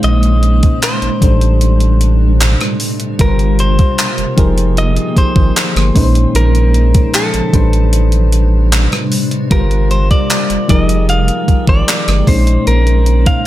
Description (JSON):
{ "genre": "contemporary R&B", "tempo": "76 BPM", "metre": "4/4", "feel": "straight", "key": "unclear", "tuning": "A4 = 444 Hz", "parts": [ { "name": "direct-recorded clean electric guitar", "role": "melody", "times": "0.0-13.5 s", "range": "A4 to F5", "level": "-20 LUFS", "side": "equal", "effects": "spring reverb, ping-pong delay" }, { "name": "soft electric-piano-like synth keys", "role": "accompaniment", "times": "0.0-13.5 s", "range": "A2 to C5", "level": "-18 LUFS", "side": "left 2 dB", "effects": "chorus" }, { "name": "granular cloud pad", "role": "sustained chords", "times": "0.0-13.5 s", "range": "B2 to G5", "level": "-21 LUFS", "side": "equal", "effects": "built-in reverb" }, { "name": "round analog bass", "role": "bass", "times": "0.0-13.3 s", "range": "F1 to Bb1", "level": "-12 LUFS", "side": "equal", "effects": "none" }, { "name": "gated 80s digital drum machine", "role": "drums", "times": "0.0-13.4 s", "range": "handclaps, hi-hat, kick drum, rim click", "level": "-14 LUFS", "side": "equal", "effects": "gated reverb, overdrive" } ], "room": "little or no reverb", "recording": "none", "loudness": "-10 LUFS", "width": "side -14 dB against mid", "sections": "0.0-13.5 A section", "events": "none", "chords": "0.0 Bbm11; 1.2 Am11; 3.2 Gm7; 4.4 Fm11; 6.0 Bbm11; 7.5 Am11; 9.5 Gm7; 10.7 Fm11; 12.3 Bbm11" }